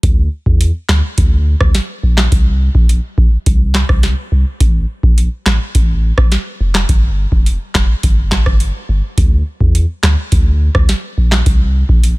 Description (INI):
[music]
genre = dancehall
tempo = 105 BPM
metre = 4/4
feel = straight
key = unclear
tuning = A4 = 441 Hz
[part]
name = punchy sub bass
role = bass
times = 0.0-12.1 s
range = F1 to E2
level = -13 LUFS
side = equal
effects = none
[part]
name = booming analog drum machine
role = drums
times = 0.0-12.2 s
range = handclaps, hi-hat, kick drum, rim click, snare drum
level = -13 LUFS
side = equal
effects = none
[sound]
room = little or no reverb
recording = dense, heavily limited modern master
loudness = -11 LUFS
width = side -22 dB against mid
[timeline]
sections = 0.0-12.2 A section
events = none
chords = none